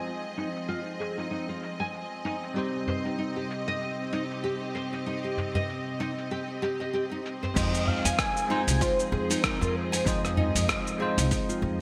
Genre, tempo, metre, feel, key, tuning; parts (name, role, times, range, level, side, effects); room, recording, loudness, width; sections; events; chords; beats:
organic downtempo; 96 BPM; 4/4; swing 57% on 16ths; F minor; A4 = 439 Hz
bell-like tine electric piano; accompaniment; 0.0-11.8 s; G3 to C5; -37 LUFS; equal; sidechain pumping, low-pass filter, digital delay
dark studio string section; sustained chords; 0.0-11.8 s; C3 to Eb5; -37 LUFS; equal; sidechain pumping
nylon-string guitar; arpeggios; 0.0-11.6 s; Eb4 to Ab5; -36 LUFS; equal; subtle chorus, low-pass filter, digital delay
quartz singing bowl; texture; 0.0-7.6 s; C5; -53 LUFS; equal
dusty soul sampler-style drum kit; drums; 0.1-11.6 s; cabasa, crash cymbal, hi-hat, rim click; -34 LUFS; equal; low-pass filter on perc, small room ambience, low-pass filter on hats, low-pass filter on snare, low-pass filter on toms, low-pass filter on cymbals, gated reverb
udu; percussion; 2.9-10.7 s; -34 LUFS; equal
breathy flute-like synth lead; melody; 7.6-11.3 s; Bb4 to Ab5; -34 LUFS; equal; tremolo, ensemble chorus, delay
upright bass; bass; 7.6-11.8 s; C2 to F2; -32 LUFS; equal; sidechain pumping
electronic kick drum; drums; 7.6-11.5 s; -34 LUFS; equal; small room ambience
moderate lush hall reverb, RT60 1.8 s, small room ambience; bright 1980s-style digital production; -29 LUFS; mono
0.0-7.6 A section; 7.6-11.8 B section
filter sweep on tine electric piano 0.0-7.6
0.0 Fm7; 2.6 Cm; 7.6 Fm7
| 0.06 0.69 1.31 1.94 | 2.56 3.19 3.81 4.44 | 5.06 5.69 6.31 6.94 | 7.56 8.19 8.81 9.44 | 10.06 10.69 11.31